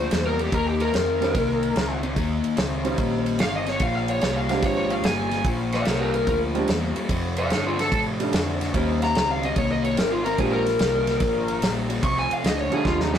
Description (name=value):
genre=electric blues shuffle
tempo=146 BPM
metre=4/4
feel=swing 68% on 8ths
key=unclear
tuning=A4 = 437 Hz
part: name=lead guitar through a small cranked amp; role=melody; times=0.0-13.2 s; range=Db4 to Db6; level=-24 LUFS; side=equal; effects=overdrive
part: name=raw garage guitar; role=riff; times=0.0-13.2 s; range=F2 to C4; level=-26 LUFS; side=left 4 dB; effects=overdrive
part: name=vintage muted fingered electric bass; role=bass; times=0.0-13.2 s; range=G1 to A2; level=-30 LUFS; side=right 1 dB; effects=none
part: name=warm soul drum kit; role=drums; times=0.1-13.2 s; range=kick drum, ride cymbal, snare drum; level=-27 LUFS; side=right 1 dB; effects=none
part: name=clear upright piano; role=accompaniment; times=1.2-13.2 s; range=G3 to G4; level=-27 LUFS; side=right 4 dB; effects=none
room=moderate studio reverb, RT60 0.6 s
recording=rough rehearsal-room recording, tube saturation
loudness=-21 LUFS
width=side -9 dB against mid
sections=0.0-13.2 A section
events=lead electric guitar solo 0.0-13.2; drum fill 12.9-13.2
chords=0.0 Bb69; 0.5 Eb13; 3.8 Bb13; 7.1 F69; 8.7 Eb13; 10.4 Bb13; 12.0 F13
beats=0.12 | 0.53 0.94 1.35 1.76 | 2.17 2.58 2.99 3.40 | 3.81 4.22 4.63 5.04 | 5.45 5.87 6.28 6.69 | 7.10 7.51 7.92 8.33 | 8.74 9.16 9.57 9.98 | 10.39 10.80 11.21 11.62 | 12.03 12.44 12.85